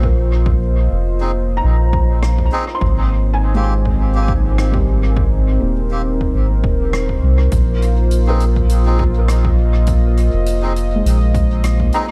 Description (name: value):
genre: ambient dub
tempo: 102 BPM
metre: 4/4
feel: swing 54% on 16ths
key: unclear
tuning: A4 = 440 Hz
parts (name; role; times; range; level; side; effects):
- warm analog pad; sustained chords; 0.0-12.1 s; Bb3 to Eb5; -26 LUFS; equal; chorus
- felt-muted upright piano; arpeggios; 0.0-12.1 s; G3 to C6; -28 LUFS; equal; analog delay
- soft dub sub bass; bass; 0.0-11.9 s; Eb1 to C2; -17 LUFS; equal; none
- electronic kick drum; drums; 0.0-11.9 s; none; -24 LUFS; equal; overdrive, studio reverb
- melodica; stabs; 1.2-12.1 s; Bb3 to Ab4; -29 LUFS; equal; dub echo
- soft-mallet drum kit; drums; 2.2-12.1 s; hi-hat, rim click; -34 LUFS; equal; studio reverb, dub echo
room: small room ambience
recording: echo-heavy mix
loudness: -16 LUFS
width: mono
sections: 0.0-12.1 A section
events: none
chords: 0.0 Bbsus4; 2.8 Abmaj9; 7.5 Bb9sus4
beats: | 0.46 1.05 1.64 2.23 | 2.81 3.40 3.99 4.58 | 5.17 5.75 6.34 6.93 | 7.52 8.11 8.70 9.28 | 9.87 10.46 11.05 11.64